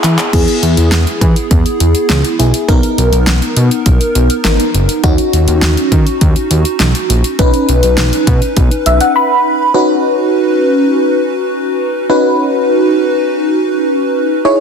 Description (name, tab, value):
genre	synth-pop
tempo	102 BPM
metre	4/4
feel	straight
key	unclear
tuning	A4 = 439 Hz
part	FM electric piano with soft pad layer	accompaniment	0.0-14.6 s	B3 to B5	-12 LUFS	equal	chorus, phaser
part	fat analog bass	bass	0.0-9.0 s	F#1 to E3	-12 LUFS	equal	none
part	pop drum kit	drums	0.0-9.1 s	crash cymbal, handclaps, hi-hat, kick drum, snare drum	-14 LUFS	equal	none
room	moderate lush hall reverb, RT60 1.9 s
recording	dense, heavily limited modern master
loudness	-9 LUFS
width	side -6 dB against mid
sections	0.3-9.7 A section; 9.7-14.6 B section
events	drum fill 0.0-0.3; FM electric piano fill 8.6-9.7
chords	0.3 E; 2.7 Bmaj7; 5.0 D#m7; 7.4 Badd9